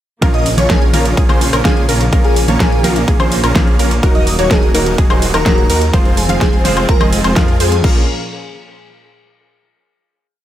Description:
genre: EDM, festival progressive house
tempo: 126 BPM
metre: 4/4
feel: straight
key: Bb minor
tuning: A4 = 441 Hz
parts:
  - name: warm concert grand piano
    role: accompaniment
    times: 0.2-8.0 s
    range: F3 to Ab4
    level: -21 LUFS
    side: right 1 dB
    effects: sidechain pumping, analog delay
  - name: dark symphonic string section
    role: sustained chords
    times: 0.2-8.1 s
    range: Bb2 to F5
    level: -23 LUFS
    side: right 1 dB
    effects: sidechain pumping
  - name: wide unison pluck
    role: arpeggios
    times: 0.2-8.0 s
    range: Ab4 to F5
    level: -23 LUFS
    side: right 1 dB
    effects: sidechain pumping, analog delay
  - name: dense compressed supersaw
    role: riff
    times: 0.2-8.0 s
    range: Db4 to F5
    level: -21 LUFS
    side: right 1 dB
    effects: sidechain pumping, analog delay
  - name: detuned saw bass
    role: bass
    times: 0.2-8.1 s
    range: Eb1 to F2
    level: -18 LUFS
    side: equal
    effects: sidechain pumping
  - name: electronic kick drum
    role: drums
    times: 0.2-7.9 s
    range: none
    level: -13 LUFS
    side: equal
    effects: overdrive
  - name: pop drum kit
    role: drums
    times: 0.2-7.9 s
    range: crash cymbal, hi-hat, ride cymbal, snare drum, woodblock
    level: -20 LUFS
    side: left 1 dB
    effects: overdrive
  - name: airy dreamy lead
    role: melody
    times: 0.3-7.8 s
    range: Ab4 to Eb5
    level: -21 LUFS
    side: equal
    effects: chorus, analog delay
room: light reverb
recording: none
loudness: -10 LUFS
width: side -12 dB against mid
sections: 0.2-7.8 drop; 7.8-9.7 final chord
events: drop 0.2-7.8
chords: 0.2 Bbm; 4.0 Ebm; 5.9 Fm; 7.8 Bbm

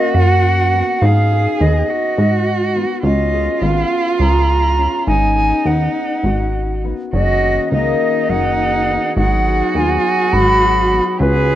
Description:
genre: contemporary instrumental, chamber music in an uneven meter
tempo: 207 BPM (eighths)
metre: 7/8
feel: straight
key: G# dorian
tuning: A4 = 441 Hz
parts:
  - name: silver concert flute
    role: melody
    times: 0.0-11.6 s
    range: B4 to B5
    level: -18 LUFS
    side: equal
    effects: none
  - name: rich cello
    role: second line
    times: 0.0-11.6 s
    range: D#4 to G#4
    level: -20 LUFS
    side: right 5 dB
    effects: none
  - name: concert harp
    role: arpeggios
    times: 0.0-11.6 s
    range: A#3 to G#4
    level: -22 LUFS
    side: left 6 dB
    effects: none
  - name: plucky analog bass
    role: bass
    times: 0.1-11.6 s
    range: F#1 to G#2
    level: -16 LUFS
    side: equal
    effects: none
  - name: mellow woodwind section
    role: sustained chords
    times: 7.1-11.6 s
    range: C#3 to G#4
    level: -25 LUFS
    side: right 1 dB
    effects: none
room: moderate studio reverb, RT60 0.6 s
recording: worn, warbling old tape, cassette tape, warbly pitch drift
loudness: -13 LUFS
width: side -12 dB against mid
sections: 0.0-11.6 A section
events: none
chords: 0.0 F#; 1.0 G#m7; 3.0 C#7; 7.1 F#69; 9.2 G#m7

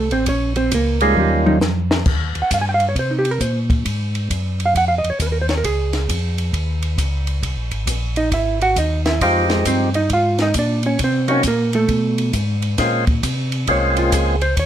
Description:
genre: soul jazz organ trio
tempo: 134 BPM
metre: 4/4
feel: swing 65% on 8ths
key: unclear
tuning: A4 = 440 Hz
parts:
  - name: hollow-body jazz guitar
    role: accompaniment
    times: 0.0-14.7 s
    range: Eb3 to Ab5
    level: -19 LUFS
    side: right 3 dB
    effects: none
  - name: mellow tonewheel organ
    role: bass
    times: 0.0-14.7 s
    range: G#1 to C3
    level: -21 LUFS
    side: equal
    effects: chorus vibrato, slow rotary speaker
  - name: compact cocktail drum kit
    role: drums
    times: 0.1-14.7 s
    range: crash cymbal, hi-hat, kick drum, ride cymbal, snare drum, toms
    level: -23 LUFS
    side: equal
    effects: none
  - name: percussive tonewheel organ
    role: melody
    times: 1.0-1.6, 9.2-14.4 s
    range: F3 to G4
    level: -18 LUFS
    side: equal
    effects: slow rotary speaker, overdrive
room: light reverb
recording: close, detailed microphones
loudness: -16 LUFS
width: side -10 dB against mid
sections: 0.0-2.1 A section; 2.1-14.7 A section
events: hollow-body jazz guitar solo 0.0-14.7; drum fill 1.2-2.1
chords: 0.3 Bbm7; 1.2 Eb9; 2.1 Eb6; 3.9 Ab5; 5.6 Dbadd9; 7.4 C7alt; 9.2 Fm9; 11.0 Cm7b5; 11.9 Abm; 12.8 Bbm9

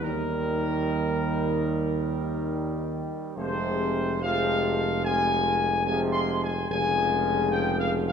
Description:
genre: classical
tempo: 72 BPM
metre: 4/4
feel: straight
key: unclear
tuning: A4 = 440 Hz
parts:
  - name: mellow trumpet section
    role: melody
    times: 0.0-8.1 s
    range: Bb4 to C6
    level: -28 LUFS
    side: left 2 dB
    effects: none
  - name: clear trombone section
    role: sustained chords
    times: 0.0-8.1 s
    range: C3 to G3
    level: -32 LUFS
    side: right 4 dB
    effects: none
  - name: mellow French horn section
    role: sustained chords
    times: 0.0-8.1 s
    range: G3 to Ab4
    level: -30 LUFS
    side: left 6 dB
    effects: none
  - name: warm tuba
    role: bass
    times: 0.0-8.1 s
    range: F1 to Eb2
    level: -29 LUFS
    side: right 4 dB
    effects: none
room: wet scoring stage reverb, RT60 2.1 s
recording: dark, warm production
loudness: -24 LUFS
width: side -7 dB against mid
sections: 0.0-8.1 A section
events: none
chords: 0.0 Eb; 3.4 Fm; 6.7 Db/F

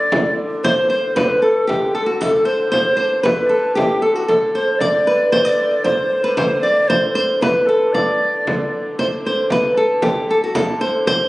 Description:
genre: medieval dance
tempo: 115 BPM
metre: 2/4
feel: straight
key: unclear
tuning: A4 = 442 Hz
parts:
  - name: flamenco guitar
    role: melody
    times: 0.0-11.3 s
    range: F#4 to D5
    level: -18 LUFS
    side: equal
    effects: tape echo
  - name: mellow tenor recorder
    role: second line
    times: 0.0-8.7 s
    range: F#4 to D5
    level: -18 LUFS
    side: left 1 dB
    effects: none
  - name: dark hurdy-gurdy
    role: drone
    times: 0.0-11.3 s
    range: D3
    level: -26 LUFS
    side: equal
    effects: none
  - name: frame drum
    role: percussion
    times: 0.1-11.3 s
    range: none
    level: -24 LUFS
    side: equal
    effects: none
room: wet recital hall reverb, RT60 1.5 s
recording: recorded on a phone in the room, studio ambience, compression, nothing above 11.0 kHz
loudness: -14 LUFS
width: side -19 dB against mid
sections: 0.6-9.0 A section; 9.0-11.3 A section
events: none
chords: none

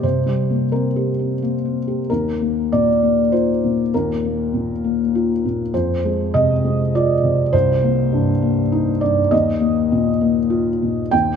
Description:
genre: neoclassical minimalist piano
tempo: 100 BPM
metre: 3/4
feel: rubato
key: Eb major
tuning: A4 = 439 Hz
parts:
  - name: felt-muted upright piano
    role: solo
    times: 0.0-11.4 s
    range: C2 to G5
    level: -16 LUFS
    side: left 1 dB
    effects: none
room: moderate concert hall reverb, RT60 1.8 s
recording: close, detailed microphones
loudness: -16 LUFS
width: side -7 dB against mid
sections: 0.0-2.1 A section; 2.1-11.4 B section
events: none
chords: 0.0 C7(no3); 2.1 Ebsus2; 5.7 Fm; 7.5 Cm7; 9.3 Ebadd9

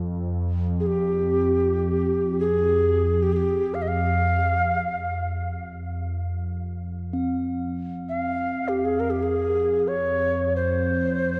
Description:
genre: world meditative, free-time meditation music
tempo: free time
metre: none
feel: none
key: F minor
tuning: A4 = 441 Hz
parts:
  - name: deep dark ambient pad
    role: drone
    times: 0.0-11.4 s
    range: F2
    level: -29 LUFS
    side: equal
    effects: chorus, built-in reverb
  - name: mellow reedy Native American-style cedar flute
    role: melody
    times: 0.8-11.4 s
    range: G4 to F5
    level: -26 LUFS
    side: equal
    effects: delay
  - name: bronze singing bowl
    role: texture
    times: 7.1-11.4 s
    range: C4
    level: -32 LUFS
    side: equal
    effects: none
room: wet huge ambient reverb, RT60 4.6 s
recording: dark, warm production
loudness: -24 LUFS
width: mono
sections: 0.0-6.9 A section; 6.9-11.4 A section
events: none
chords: none

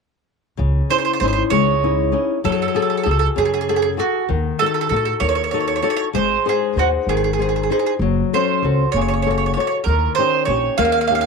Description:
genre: italian folk, Italian serenade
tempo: 65 BPM (dotted quarters)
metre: 6/8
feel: straight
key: C# harmonic minor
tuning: A4 = 440 Hz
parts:
  - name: flamenco guitar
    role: accompaniment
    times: 0.6-11.3 s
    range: C#3 to C#5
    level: -20 LUFS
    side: left 11 dB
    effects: none
  - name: upright bass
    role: bass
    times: 0.6-11.3 s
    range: F#1 to A2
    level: -22 LUFS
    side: equal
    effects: none
  - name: mandolin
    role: melody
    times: 0.9-11.3 s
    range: F#4 to E#5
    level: -19 LUFS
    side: right 11 dB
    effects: none
room: moderate spring reverb, RT60 1.3 s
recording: 1960s-style stereo with parts hard left and right, lossy compression artefacts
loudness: -16 LUFS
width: side -4 dB against mid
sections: 0.6-11.3 A section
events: none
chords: 0.6 C#madd9; 2.5 F#madd9; 4.3 D#dim; 6.2 G#; 8.0 F#m; 9.9 D#7

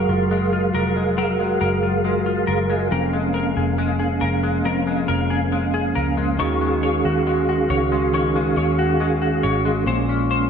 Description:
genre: dream pop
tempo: 69 BPM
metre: 4/4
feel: straight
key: Gb major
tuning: A4 = 444 Hz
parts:
  - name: mellow tonewheel organ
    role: sustained chords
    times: 0.0-10.5 s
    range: Eb3 to F5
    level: -21 LUFS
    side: right 3 dB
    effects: chorus vibrato, fast rotary speaker
  - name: semi-hollow electric guitar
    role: arpeggios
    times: 0.0-10.5 s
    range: F2 to Db5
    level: -22 LUFS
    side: left 5 dB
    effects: analog chorus, ping-pong delay
  - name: vintage muted picked electric bass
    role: bass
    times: 0.0-10.5 s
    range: F1 to Eb2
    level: -25 LUFS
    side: right 1 dB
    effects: none
room: wet plate reverb, RT60 2.8 s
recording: dreamy mix soaked in reverb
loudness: -18 LUFS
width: side -7 dB against mid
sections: 0.0-10.5 A section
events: none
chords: 0.0 Gbmaj9; 2.9 Db6/F; 6.4 Ebm11; 9.9 Bbm9

